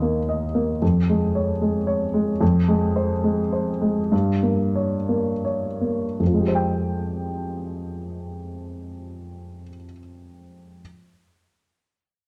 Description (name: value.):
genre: classical.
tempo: 78-114 BPM.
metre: 3/4.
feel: rubato.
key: F minor.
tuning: A4 = 441 Hz.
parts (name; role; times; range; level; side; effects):
warm baby grand piano; accompaniment; 0.0-10.8 s; Eb2 to G5; -23 LUFS; equal; none.
room: light reverb.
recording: dark, warm production.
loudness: -22 LUFS.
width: mono.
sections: 0.0-6.2 A section; 6.2-10.8 B section.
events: slowing down 1.6-6.2.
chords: 0.0 Eb5; 0.8 Db/F; 2.4 Fm; 4.1 Gdim; 6.2 Fmadd9.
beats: 0.28 | 0.82 1.35 1.88 | 2.41 2.95 3.52 | 4.12 4.76 5.45 | 6.20 6.95 7.72 | 8.48 9.25 10.02.